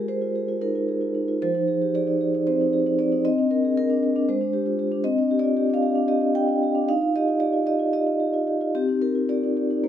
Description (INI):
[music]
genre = classical, contemporary piece for solo vibraphone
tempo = 228 BPM (eighths)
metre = 7/8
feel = rubato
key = unclear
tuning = A4 = 440 Hz
[part]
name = vibraphone with soft mallets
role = solo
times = 0.0-9.9 s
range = F3 to G5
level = -20 LUFS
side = equal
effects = none
[sound]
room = light reverb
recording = none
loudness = -20 LUFS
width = side -10 dB against mid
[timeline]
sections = 0.0-9.9 A section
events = none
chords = 0.0 Ab69; 1.4 Fm9; 3.2 Cm9; 4.3 Abmaj7#11; 5.0 Csus2; 6.9 Ebadd9; 8.7 Cm